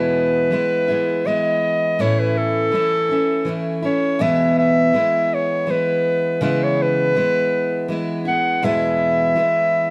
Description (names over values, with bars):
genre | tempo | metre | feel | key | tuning
acoustic folk duo or small band | 81 BPM | 3/4 | straight | E major | A4 = 445 Hz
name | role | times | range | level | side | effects
clear clarinet | melody | 0.0-9.9 s | A4 to F#5 | -20 LUFS | equal | none
picked steel-string acoustic guitar | accompaniment | 0.0-9.9 s | E2 to E4 | -23 LUFS | equal | none
room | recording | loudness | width
light reverb | none | -19 LUFS | mono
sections
0.0-9.9 A section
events
none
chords
0.0 E; 2.0 A; 4.2 E; 6.4 C#m7; 8.6 E